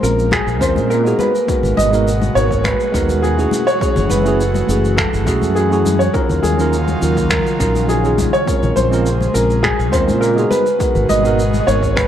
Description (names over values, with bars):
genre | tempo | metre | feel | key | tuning
sunset chillout | 103 BPM | 4/4 | straight | unclear | A4 = 440 Hz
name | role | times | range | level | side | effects
dark grand piano | melody | 0.0-12.1 s | Ab4 to Eb5 | -18 LUFS | right 1 dB | analog delay
tine electric piano | accompaniment | 0.0-12.0 s | Gb3 to Bb4 | -20 LUFS | moving between left 3 dB and right 3 dB | auto-pan, low-pass filter, analog delay
airy breathy pad | sustained chords | 0.0-12.1 s | Cb3 to Gb4 | -24 LUFS | right 1 dB | chorus
fretless electric bass | bass | 0.0-12.0 s | Gb1 to Bb2 | -18 LUFS | equal | ensemble chorus
shaker and finger snaps | drums | 0.0-12.1 s | none | -25 LUFS | equal | dub echo
electronic kick drum | drums | 0.3-12.1 s | none | -22 LUFS | equal | none
congas | percussion | 0.3-12.1 s | none | -26 LUFS | left 5 dB | dub echo
room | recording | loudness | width
moderate spring reverb, RT60 2.9 s | echo-heavy mix | -13 LUFS | side -10 dB against mid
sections
0.0-12.1 A section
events
none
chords
0.0 Bbm9; 1.2 Abm9; 3.5 Gbm9; 6.1 Ebm9; 8.5 Bbm9; 10.5 Abm9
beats
0.32 0.90 | 1.48 2.07 2.65 3.23 | 3.81 4.40 4.98 5.56 | 6.14 6.73 7.31 7.89 | 8.47 9.06 9.64 10.22 | 10.80 11.39 11.97